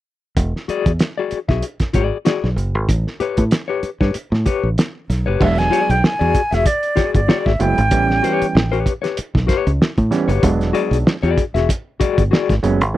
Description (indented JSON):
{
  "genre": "funk",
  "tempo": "96 BPM",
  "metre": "4/4",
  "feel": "swing 56% on 16ths",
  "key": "E mixolydian",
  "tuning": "A4 = 442 Hz",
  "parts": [
    { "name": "fingered electric bass", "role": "bass", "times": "0.4-12.9 s", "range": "E1 to A2", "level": "-18 LUFS", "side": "equal", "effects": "none" },
    { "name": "cloth-damped thuddy drum kit", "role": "drums", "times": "0.4-12.9 s", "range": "crash cymbal, hi-hat, kick drum, snare drum", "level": "-18 LUFS", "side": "right 1 dB", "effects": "none" },
    { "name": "mellow electric guitar", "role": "accompaniment", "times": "0.7-12.5 s", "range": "F#4 to E5", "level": "-20 LUFS", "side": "left 8 dB", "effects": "tremolo" },
    { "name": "silver concert flute", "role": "melody", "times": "5.4-8.9 s", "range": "D5 to G#5", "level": "-19 LUFS", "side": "right 1 dB", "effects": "none" },
    { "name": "overdriven clav", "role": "stabs", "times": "5.4-13.0 s", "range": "A2 to E4", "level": "-20 LUFS", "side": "right 4 dB", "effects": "none" }
  ],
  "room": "little or no reverb",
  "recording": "dry, close 1970s-style studio recording",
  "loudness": "-15 LUFS",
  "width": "side -14 dB against mid",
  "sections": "0.4-5.4 A section; 5.4-13.0 B section",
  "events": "none",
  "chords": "0.4 E9; 2.9 A9; 5.4 E9; 7.9 A9; 10.4 E9"
}